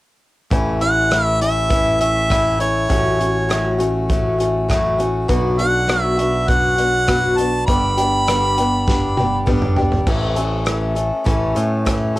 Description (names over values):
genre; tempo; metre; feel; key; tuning
folk rock and heartland rock; 100 BPM; 4/4; straight; A major; A4 = 438 Hz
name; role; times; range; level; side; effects
picked acoustic archtop guitar; accompaniment; 0.5-12.2 s; G2 to A4; -19 LUFS; left 1 dB; cassette tape
modern bright picked electric bass; bass; 0.5-12.2 s; G1 to A2; -22 LUFS; equal; none
loose indie drum kit; drums; 0.5-12.2 s; crash cymbal, hi-hat, kick drum, rim click, snare drum, toms; -21 LUFS; equal; cassette tape
clear harmonica; melody; 0.8-9.4 s; C#5 to B5; -19 LUFS; right 1 dB; cassette tape
room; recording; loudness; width
light reverb; home recording on cassette; -15 LUFS; side -17 dB against mid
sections
0.5-10.1 A section; 10.1-12.2 B section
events
drum fill 8.9-10.1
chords
0.5 A; 2.9 F#m/A; 5.3 Bm; 7.7 G; 10.1 A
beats
| 0.52 1.11 1.71 2.31 | 2.91 3.50 4.10 4.70 | 5.30 5.89 6.49 7.09 | 7.69 8.28 8.88 9.48 | 10.07 10.67 11.27 11.86